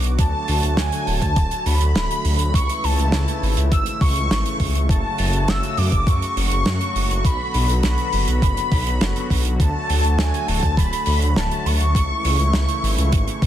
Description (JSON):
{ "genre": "synthwave", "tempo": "102 BPM", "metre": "4/4", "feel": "straight", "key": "unclear", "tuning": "A4 = 440 Hz", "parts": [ { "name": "warm analog pad", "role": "sustained chords", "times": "0.0-13.5 s", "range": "C#3 to F#4", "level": "-28 LUFS", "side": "equal", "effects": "chorus, sidechain pumping" }, { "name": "dark detuned saw bass", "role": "bass", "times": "0.0-13.5 s", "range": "D1 to F#2", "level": "-20 LUFS", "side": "equal", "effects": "none" }, { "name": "damped 70s drum kit", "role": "drums", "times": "0.0-13.5 s", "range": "hi-hat, snare drum", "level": "-26 LUFS", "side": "right 2 dB", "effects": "none" }, { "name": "warm velvety synth lead", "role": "melody", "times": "0.2-13.5 s", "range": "G#5 to E6", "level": "-26 LUFS", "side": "equal", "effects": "chorus, digital delay" }, { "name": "string machine, violins", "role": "second line", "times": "0.2-13.5 s", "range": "G#5 to E6", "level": "-31 LUFS", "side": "left 1 dB", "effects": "ensemble chorus, cassette tape, digital delay" }, { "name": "electronic kick drum", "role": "drums", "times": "0.2-13.5 s", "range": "none", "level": "-19 LUFS", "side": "equal", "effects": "overdrive" } ], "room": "light reverb, small room ambience", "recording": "dense, heavily limited modern master", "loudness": "-17 LUFS", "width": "side -11 dB against mid", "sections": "0.0-13.5 A section", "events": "none", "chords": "0.2 D; 2.5 A; 4.9 F#m; 7.2 Bm; 9.6 D; 12.0 A" }